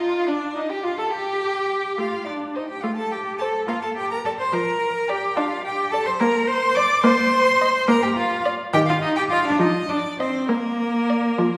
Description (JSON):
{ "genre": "quick classical-period movement for string quartet", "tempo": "71 BPM (dotted quarters)", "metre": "6/8", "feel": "rubato", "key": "Bb major", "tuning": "A4 = 440 Hz", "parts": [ { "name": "rich violin", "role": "melody", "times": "0.0-11.6 s", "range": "Bb4 to D6", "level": "-29 LUFS", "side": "equal", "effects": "none" }, { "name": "rich violin", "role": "second line", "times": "0.0-11.3 s", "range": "D4 to Eb5", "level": "-31 LUFS", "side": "equal", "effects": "none" }, { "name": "warm viola", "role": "accompaniment", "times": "0.0-11.6 s", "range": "Eb3 to A4", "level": "-27 LUFS", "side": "equal", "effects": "none" }, { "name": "rich cello", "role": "bass", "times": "0.0-11.6 s", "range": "Bb3 to D5", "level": "-25 LUFS", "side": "equal", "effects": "none" } ], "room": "wet recital hall reverb, RT60 1.8 s", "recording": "heard from further back in the room", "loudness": "-22 LUFS", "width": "mono", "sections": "0.0-11.6 A section", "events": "none", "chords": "0.3 Dsus4; 2.0 F/A; 3.7 Bb; 5.4 Dmadd11; 6.2 Bb; 7.0 Bbsus24; 7.9 Bb; 8.7 N.C.; 9.6 F5; 10.5 Bb" }